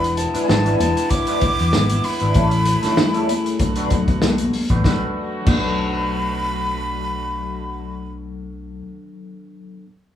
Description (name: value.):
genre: lush 1970s-style soul.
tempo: 96 BPM.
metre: 4/4.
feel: swing 54% on 16ths.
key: B minor.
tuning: A4 = 444 Hz.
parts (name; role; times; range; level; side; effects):
breathy jazz flute; melody; 0.0-8.1 s; G#5 to D6; -25 LUFS; right 1 dB; none.
mellow tine electric piano; accompaniment; 0.0-9.9 s; F#3 to B4; -26 LUFS; left 3 dB; slow stereo tremolo.
muted French horn section; sustained chords; 0.0-8.1 s; C#3 to F#4; -31 LUFS; left 2 dB; none.
fingered electric bass; bass; 0.0-8.8 s; E1 to B2; -24 LUFS; left 1 dB; none.
vintage drum kit; drums; 0.0-5.7 s; crash cymbal, hi-hat, kick drum, snare drum; -21 LUFS; equal; none.
electric guitar through a small old amp; riff; 0.2-9.0 s; G3 to B4; -27 LUFS; right 1 dB; wah.
congas; percussion; 0.5-5.7 s; none; -26 LUFS; equal; none.
room: moderate studio reverb, RT60 0.5 s.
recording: band playing live in one room, small room ambience.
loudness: -17 LUFS.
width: side -10 dB against mid.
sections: 0.0-4.8 A section; 4.8-7.3 B section.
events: none.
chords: 0.0 E7; 2.4 A7; 3.6 Bm7.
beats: 0.49 1.11 1.73 | 2.35 2.98 3.60 4.22 | 4.85 5.47 6.09 6.71.